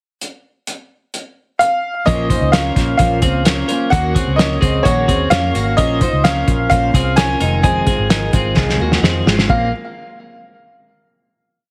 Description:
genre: jangly indie pop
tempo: 129 BPM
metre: 4/4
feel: straight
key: Bb minor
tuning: A4 = 440 Hz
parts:
  - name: cloth-damped thuddy drum kit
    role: drums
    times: 0.2-9.6 s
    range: hi-hat, kick drum, snare drum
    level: -19 LUFS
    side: equal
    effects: none
  - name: bright upright piano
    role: melody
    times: 1.6-9.7 s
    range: Db5 to Ab5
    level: -21 LUFS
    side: equal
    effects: digital delay
  - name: fingerpicked steel-string acoustic guitar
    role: accompaniment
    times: 2.1-9.7 s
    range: F2 to Db5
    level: -26 LUFS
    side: equal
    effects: none
  - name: twelve-string electric guitar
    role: arpeggios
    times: 2.1-9.7 s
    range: Ab3 to C5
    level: -23 LUFS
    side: equal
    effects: spring reverb
  - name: vintage muted fingered electric bass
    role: bass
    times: 2.1-9.7 s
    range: F1 to F2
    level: -22 LUFS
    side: equal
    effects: none
room: light reverb, studio ambience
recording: heavily compressed radio sound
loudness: -15 LUFS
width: mono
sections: 0.2-2.1 pickup bar; 2.1-9.5 verse; 9.5-11.3 final chord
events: drum fill 8.6-9.5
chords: 0.2 N.C.; 2.1 Bbmadd9; 3.9 Ebm7; 5.8 Bbmadd9; 7.4 Fm7; 9.5 N.C.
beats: | 0.21 0.68 1.14 1.60 | 2.07 2.53 2.99 3.46 | 3.92 4.39 4.85 5.32 | 5.78 6.25 6.71 7.17 | 7.64 8.10 8.57 9.03 | 9.49

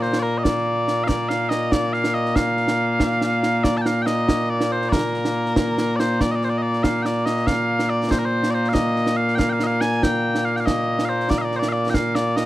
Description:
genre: scottish traditional, Scottish pipe music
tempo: 94 BPM (dotted quarters)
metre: 6/8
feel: straight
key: Bb major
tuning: A4 = 440 Hz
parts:
  - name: mellow small bagpipes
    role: melody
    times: 0.0-12.5 s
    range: Bb2 to A5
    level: -20 LUFS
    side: equal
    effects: none
  - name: concert snare drum and concert bass drum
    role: drums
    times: 0.0-12.5 s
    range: none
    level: -24 LUFS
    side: right 1 dB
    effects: none
room: small room reverb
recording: dry, close 1970s-style studio recording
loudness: -18 LUFS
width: side -15 dB against mid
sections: 0.0-6.2 A section; 6.2-12.5 B section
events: none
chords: none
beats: 0.45 | 1.09 1.73 | 2.37 3.00 | 3.64 4.28 | 4.92 5.56 | 6.20 6.83 | 7.47 8.11 | 8.75 9.39 | 10.03 10.66 | 11.30 11.94

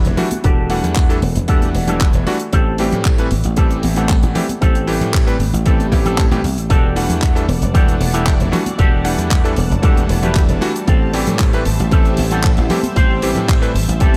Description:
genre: nu-disco, nu disco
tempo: 115 BPM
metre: 4/4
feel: straight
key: E minor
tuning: A4 = 439 Hz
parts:
  - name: bright electric grand piano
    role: accompaniment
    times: 0.0-14.2 s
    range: E3 to F#5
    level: -23 LUFS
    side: equal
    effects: sidechain pumping, low-pass filter, analog delay
  - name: damped 70s drum kit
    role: drums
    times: 0.0-14.2 s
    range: handclaps, hi-hat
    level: -28 LUFS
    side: equal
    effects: none
  - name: dry thumbed slap bass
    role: bass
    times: 0.1-14.2 s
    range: E1 to A2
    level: -21 LUFS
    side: equal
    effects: none
  - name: electric guitar with an envelope filter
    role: riff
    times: 0.2-14.2 s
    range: C4 to C5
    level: -28 LUFS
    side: equal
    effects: analog chorus, low-pass filter, analog delay
  - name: congas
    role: percussion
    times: 0.2-14.2 s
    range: none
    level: -28 LUFS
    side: equal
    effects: none
  - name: electronic kick drum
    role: drums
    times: 0.4-14.1 s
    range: none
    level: -17 LUFS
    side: equal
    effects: none
  - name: lush unison pad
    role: sustained chords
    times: 6.7-14.2 s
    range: G3 to A5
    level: -29 LUFS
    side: equal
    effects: chorus, phaser, sidechain pumping
room: light reverb, small room reverb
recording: echo-heavy mix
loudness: -15 LUFS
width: mono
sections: 0.0-14.2 A section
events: filter sweep on clean electric guitar 0.0-14.2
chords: 0.0 Em11; 2.5 Am7; 6.7 Em11; 10.9 Am7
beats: | 0.44 0.97 1.49 2.01 | 2.53 3.05 3.58 4.10 | 4.62 5.14 5.66 6.18 | 6.71 7.23 7.75 8.27 | 8.79 9.31 9.84 10.36 | 10.88 11.40 11.92 12.44 | 12.97 13.49 14.01

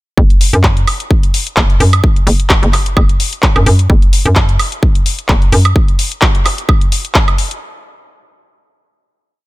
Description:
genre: bass house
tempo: 129 BPM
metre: 4/4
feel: swing 54% on 16ths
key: unclear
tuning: A4 = 440 Hz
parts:
  - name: hollow knocking FM bass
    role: bass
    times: 0.2-5.7 s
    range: F#1 to F#2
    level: -11 LUFS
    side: equal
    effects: tube saturation, sidechain pumping
  - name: electronic kick drum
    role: drums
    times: 0.2-7.3 s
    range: none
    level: -11 LUFS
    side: equal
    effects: none
  - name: house drum kit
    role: drums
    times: 0.3-7.6 s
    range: handclaps, hi-hat, woodblock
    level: -16 LUFS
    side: equal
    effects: none
room: digital ambience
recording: none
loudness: -9 LUFS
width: side -19 dB against mid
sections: 0.2-7.6 drop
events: drop 0.2-7.6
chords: none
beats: | 0.17 0.64 1.11 1.57 | 2.04 2.50 2.97 3.43 | 3.90 4.36 4.83 5.29 | 5.76 6.22 6.69 7.15

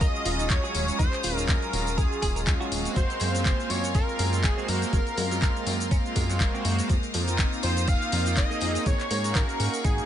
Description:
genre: nu-disco, nu disco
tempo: 122 BPM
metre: 4/4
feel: swing 56% on 16ths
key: unclear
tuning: A4 = 440 Hz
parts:
  - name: wide unison lead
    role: melody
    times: 0.0-10.1 s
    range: Ab4 to F5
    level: -31 LUFS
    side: equal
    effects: tape echo
  - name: warm analog pad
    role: accompaniment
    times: 0.0-10.1 s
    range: Gb3 to C5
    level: -31 LUFS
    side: right 1 dB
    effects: chorus, sidechain pumping, tape echo
  - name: bright chamber violin section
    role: sustained chords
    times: 0.0-10.1 s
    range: Ab4 to Eb6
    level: -35 LUFS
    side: left 1 dB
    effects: sidechain pumping
  - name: direct-recorded clean electric guitar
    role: riff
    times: 0.0-9.9 s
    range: C3 to Bb4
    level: -37 LUFS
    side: right 5 dB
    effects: ensemble chorus
  - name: chorused synth bass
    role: bass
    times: 0.0-10.0 s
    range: Eb1 to Ab2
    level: -29 LUFS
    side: equal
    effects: none
  - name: electronic kick drum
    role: drums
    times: 0.0-10.0 s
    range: none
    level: -25 LUFS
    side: equal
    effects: overdrive
  - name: house drum kit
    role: drums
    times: 0.0-10.1 s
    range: cabasa, handclaps, hi-hat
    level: -32 LUFS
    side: left 1 dB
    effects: none
  - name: tambourine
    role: percussion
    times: 0.0-10.0 s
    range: none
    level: -40 LUFS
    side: left 5 dB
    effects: none
room: little or no reverb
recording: nothing above 10.4 kHz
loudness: -23 LUFS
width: side -10 dB against mid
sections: 0.0-10.1 A section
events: none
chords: 0.0 Ebm11; 3.0 Gbmaj9#11; 6.9 F7sus4; 8.9 Ab7sus4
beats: 0.01 0.50 | 0.99 1.49 1.98 2.47 | 2.96 3.45 3.94 4.44 | 4.93 5.42 5.91 6.40 | 6.89 7.39 7.88 8.37 | 8.86 9.35 9.85

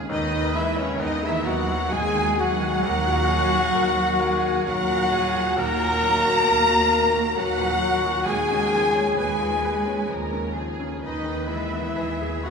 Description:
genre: cinematic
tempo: 66 BPM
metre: 3/4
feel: rubato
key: Eb minor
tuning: A4 = 439 Hz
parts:
  - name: rich symphonic violin section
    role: second line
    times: 0.0-12.5 s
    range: Gb4 to B4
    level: -33 LUFS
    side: right 1 dB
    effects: none
  - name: bright grand piano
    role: accompaniment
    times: 0.0-12.5 s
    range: D#2 to Cb5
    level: -31 LUFS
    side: left 1 dB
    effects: none
  - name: warm studio violin section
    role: melody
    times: 0.1-12.5 s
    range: Db5 to Bb5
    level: -28 LUFS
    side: left 4 dB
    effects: none
  - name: bright clarinet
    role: second line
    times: 0.1-12.5 s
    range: Db4 to Bb4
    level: -30 LUFS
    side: left 2 dB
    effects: none
  - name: mellow hollow concert flute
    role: second line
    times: 0.1-12.5 s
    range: Db5 to Bb5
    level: -30 LUFS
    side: equal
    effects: none
  - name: warm symphonic viola section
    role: accompaniment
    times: 0.1-12.5 s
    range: Db5 to Bb5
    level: -27 LUFS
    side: right 1 dB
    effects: none
  - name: mellow French horn section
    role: sustained chords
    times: 0.1-12.5 s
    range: Db4 to Bb4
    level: -28 LUFS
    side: left 4 dB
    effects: none
  - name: rich chamber double bass section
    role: bass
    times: 0.1-12.5 s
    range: D#2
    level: -30 LUFS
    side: right 2 dB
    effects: none
  - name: rich symphonic cello section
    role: bass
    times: 0.1-12.5 s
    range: Db3 to Bb3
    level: -30 LUFS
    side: right 2 dB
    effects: none
room: wet church reverb, RT60 3.4 s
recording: recorded in a church or concert hall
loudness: -20 LUFS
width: side -5 dB against mid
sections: 0.0-12.5 A section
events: none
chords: 0.1 Emaj7/D#; 2.8 Ebm; 8.3 Db7/Eb; 11.0 Emaj7/D#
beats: | 0.10 1.01 1.93 | 2.83 3.75 4.66 | 5.57 6.48 7.37 | 8.27 9.19 10.10 | 11.02 11.97

